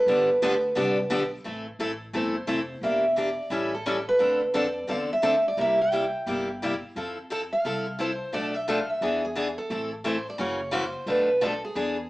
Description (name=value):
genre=acoustic string swing (jazz manouche)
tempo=175 BPM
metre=4/4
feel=swing 60% on 8ths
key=A minor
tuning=A4 = 441 Hz
part: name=picked steel-string acoustic guitar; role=melody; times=0.0-12.1 s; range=G#4 to G5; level=-25 LUFS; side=right 1 dB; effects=none
part: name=picked steel-string acoustic guitar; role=accompaniment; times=0.1-12.0 s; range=B2 to A4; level=-28 LUFS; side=left 1 dB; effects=none
part: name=upright bass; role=bass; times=0.1-12.1 s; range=E1 to F2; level=-38 LUFS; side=equal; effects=none
room=moderate studio reverb, RT60 0.7 s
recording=band playing live in one room, small speaker sound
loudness=-24 LUFS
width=side -19 dB against mid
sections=0.0-1.5 A section; 1.5-12.1 B section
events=none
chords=0.1 G7; 1.5 Am; 2.8 Em7b5; 3.5 A7; 4.2 Dm7; 5.6 C7; 7.0 Fmaj7; 8.3 Bm7b5; 9.0 E7; 9.7 Am; 10.4 F#7; 11.1 Bm7b5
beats=| 0.08 0.42 0.77 1.11 | 1.45 1.80 2.14 2.48 | 2.83 3.17 3.52 3.86 | 4.21 4.55 4.89 5.24 | 5.58 5.93 6.27 6.61 | 6.96 7.30 7.64 7.99 | 8.33 8.67 9.02 9.36 | 9.70 10.05 10.39 10.73 | 11.07 11.42 11.76